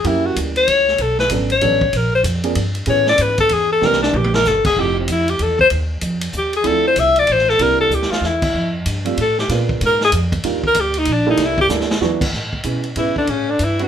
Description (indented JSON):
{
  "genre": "jazz, small-group swing and bop",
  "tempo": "191 BPM",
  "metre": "3/4",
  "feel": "swing 63% on 8ths",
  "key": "F major from 4.8 s",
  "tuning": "A4 = 440 Hz",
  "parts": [
    { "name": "clear alto saxophone", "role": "melody", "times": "0.0-13.9 s", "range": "C4 to E5", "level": "-15 LUFS", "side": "left 2 dB", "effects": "none" },
    { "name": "warm baby grand piano", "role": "accompaniment", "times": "0.0-13.9 s", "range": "E3 to A4", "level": "-22 LUFS", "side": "right 6 dB", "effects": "none" },
    { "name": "upright bass", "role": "bass", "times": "0.0-13.9 s", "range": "F1 to B2", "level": "-22 LUFS", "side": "equal", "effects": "none" },
    { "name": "swinging big-band drum kit", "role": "drums", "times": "0.0-13.8 s", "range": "crash cymbal, hi-hat, kick drum, ride cymbal, snare drum, toms", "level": "-24 LUFS", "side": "equal", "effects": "none" },
    { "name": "edgy tenor saxophone", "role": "second line", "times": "13.0-13.9 s", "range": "C#3 to F#3", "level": "-26 LUFS", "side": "right 2 dB", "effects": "none" }
  ],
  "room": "moderate studio reverb, RT60 0.5 s",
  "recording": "minimal, uncompressed stereo recording",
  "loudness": "-14 LUFS",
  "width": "side -9 dB against mid",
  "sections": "0.0-4.8 A section; 4.8-12.3 A section; 12.3-13.9 B section",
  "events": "alto saxophone solo 0.0-12.3; drum fill 3.8-4.5, 7.9-8.2, 11.7-12.0",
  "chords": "0.1 F#7b9; 1.0 Bm9; 1.9 Bb5; 2.9 Amaj9; 3.8 C7; 4.8 Fmaj9; 5.7 Ebsus2; 6.7 Dm7; 7.6 C9; 8.6 Fadd9; 9.5 Bb7b9; 10.4 Ebmaj9; 11.4 C13; 12.0 Esus2; 12.3 Amaj9; 13.3 A9",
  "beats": "| 0.05 0.37 0.68 | 1.00 1.31 1.63 | 1.94 2.26 2.57 | 2.89 3.20 3.52 | 3.83 4.14 4.46 | 4.77 5.09 5.40 | 5.72 6.03 6.35 | 6.66 6.98 7.29 | 7.61 7.92 8.23 | 8.55 8.87 9.18 | 9.49 9.81 10.12 | 10.44 10.75 11.07 | 11.38 11.70 12.02 | 12.33 12.65 12.96 | 13.28 13.60"
}